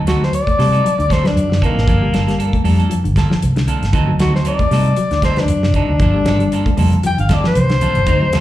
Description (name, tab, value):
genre	afrobeat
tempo	116 BPM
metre	4/4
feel	swing 55% on 16ths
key	G minor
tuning	A4 = 440 Hz
part	mellow electric guitar	arpeggios	0.0-8.4 s	C3 to A3	-21 LUFS	left 3 dB	analog chorus, slapback echo
part	warm alto saxophone	melody	0.1-8.4 s	Bb3 to G5	-18 LUFS	left 2 dB	slapback echo
part	clean electric guitar	stabs	0.1-8.4 s	F3 to A4	-25 LUFS	right 6 dB	slapback echo
part	vintage muted fingered electric bass	bass	0.1-8.4 s	G1 to C3	-16 LUFS	right 1 dB	none
part	damped 70s drum kit	drums	0.1-8.4 s	hi-hat, kick drum, snare drum	-20 LUFS	equal	none
part	congas	percussion	6.3-8.4 s	none	-21 LUFS	right 1 dB	slapback echo
room	light reverb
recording	live gig heard through the venue's PA, club reverb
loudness	-13 LUFS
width	side -14 dB against mid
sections	0.0-8.4 A section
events	alto saxophone solo 0.0-8.4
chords	0.0 D7b9; 1.9 Gm9; 3.9 D7b9; 6.0 Gm9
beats	0.33 0.85 1.36 | 1.88 2.39 2.91 3.43 | 3.94 4.46 4.97 5.49 | 6.00 6.52 7.04 7.55 | 8.07